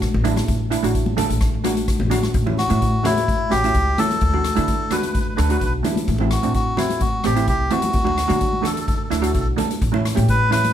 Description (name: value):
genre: calypso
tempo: 128 BPM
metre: 4/4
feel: straight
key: D major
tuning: A4 = 441 Hz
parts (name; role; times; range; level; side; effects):
- steel pan; accompaniment; 0.0-10.7 s; A3 to A4; -23 LUFS; right 4 dB; none
- upright bass; bass; 0.0-10.7 s; A1 to D3; -22 LUFS; left 1 dB; none
- street-band drum kit; drums; 0.0-10.7 s; hi-hat, kick drum, rim click; -25 LUFS; left 1 dB; none
- congas; percussion; 0.1-10.7 s; none; -27 LUFS; left 3 dB; none
- melodica; melody; 2.6-10.7 s; E4 to B4; -22 LUFS; left 1 dB; none
room: light reverb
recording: none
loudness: -17 LUFS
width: side -10 dB against mid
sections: 0.0-2.3 A section; 2.3-10.7 B section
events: none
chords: 0.0 D/A; 2.3 A; 4.2 Dadd9; 6.1 Am; 7.9 D; 9.8 Aadd9